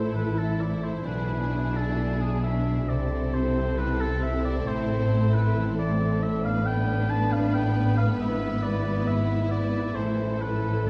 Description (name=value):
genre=classical, dramatic, fast romantic movement for symphony orchestra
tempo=135 BPM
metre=4/4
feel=rubato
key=A minor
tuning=A4 = 437 Hz
part: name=clear symphonic violin section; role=melody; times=0.0-10.9 s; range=G#4 to B4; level=-40 LUFS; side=equal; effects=none
part: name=rich symphonic violin section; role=second line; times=0.0-10.9 s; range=D4 to E4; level=-38 LUFS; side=equal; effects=none
part: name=warm oboe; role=second line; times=0.0-10.9 s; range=G#4 to A5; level=-34 LUFS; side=equal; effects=none
part: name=rich symphonic viola section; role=accompaniment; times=0.0-10.9 s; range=E3 to E4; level=-36 LUFS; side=equal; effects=none
part: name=concert harp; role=arpeggios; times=0.0-10.9 s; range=G#2 to B4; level=-33 LUFS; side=equal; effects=none
part: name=rich symphonic double bass section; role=bass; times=0.0-10.9 s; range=G#1 to C2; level=-31 LUFS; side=equal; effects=none
part: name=warm symphonic cello section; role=bass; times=0.0-10.9 s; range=G#2 to C3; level=-32 LUFS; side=equal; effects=none
room=moderate concert hall reverb, RT60 2.3 s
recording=dark, warm production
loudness=-26 LUFS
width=mono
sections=0.0-10.9 A section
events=none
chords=0.0 Am; 1.1 E7/B; 2.9 Am/C; 4.7 Am; 6.5 G9/A; 8.2 E/G#; 10.0 Am